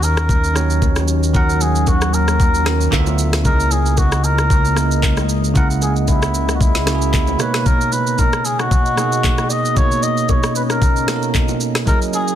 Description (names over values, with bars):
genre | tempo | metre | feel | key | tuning
amapiano | 114 BPM | 4/4 | swing 55% on 16ths | unclear | A4 = 440 Hz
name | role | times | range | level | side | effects
trumpet with cup mute | melody | 0.0-12.4 s | E4 to D#5 | -21 LUFS | left 1 dB | tape echo
bell-like tine electric piano | accompaniment | 0.0-12.4 s | B2 to F#5 | -22 LUFS | right 5 dB | auto-pan
deep dark ambient pad | sustained chords | 0.2-12.4 s | B2 to D#5 | -26 LUFS | left 2 dB | chorus, built-in reverb, sidechain pumping
fat analog bass | bass | 0.0-7.4 s | C#2 to D#2 | -18 LUFS | equal | none
afro-pop drum kit | drums | 0.0-12.4 s | handclaps, kick drum, rim click, shaker, snare drum | -18 LUFS | equal | none
bongos and congas | percussion | 0.2-12.3 s | none | -28 LUFS | left 6 dB | none
room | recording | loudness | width
little or no reverb | dense, heavily limited modern master | -14 LUFS | side -10 dB against mid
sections
0.0-12.4 A section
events
none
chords
0.0 D#m7; 2.9 Dm69; 3.5 C#m69; 7.4 Bmaj9